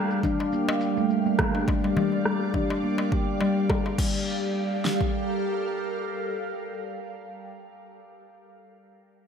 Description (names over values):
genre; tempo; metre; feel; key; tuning
organic downtempo; 104 BPM; 4/4; swing 55% on 16ths; G minor; A4 = 441 Hz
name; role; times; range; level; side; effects
ethereal airy pad; sustained chords; 0.0-7.1 s; G3 to F5; -30 LUFS; right 2 dB; ensemble chorus, built-in reverb, phaser, sidechain pumping
handpan; arpeggios; 0.0-4.3 s; G3 to G4; -27 LUFS; left 1 dB; low-pass filter, digital delay
deep house drum kit; drums; 0.1-4.1 s; crash cymbal, hi-hat, rim click, shaker; -30 LUFS; equal; overdrive, low-pass filter on hats, low-pass filter on perc, low-pass filter on snare, low-pass filter on cymbals, gated reverb
deep house drum kit; drums; 0.2-5.1 s; kick drum, snare drum; -28 LUFS; equal; overdrive, gated reverb
darbuka; percussion; 0.2-4.0 s; none; -34 LUFS; left 2 dB; none
room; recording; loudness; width
moderate lush hall reverb, RT60 1.7 s; bright 1980s-style digital production; -24 LUFS; side -7 dB against mid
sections
0.0-4.0 A section; 4.0-6.3 B section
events
filter sweep on handpan 0.0-4.0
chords
0.0 Gm7; 4.0 Gm9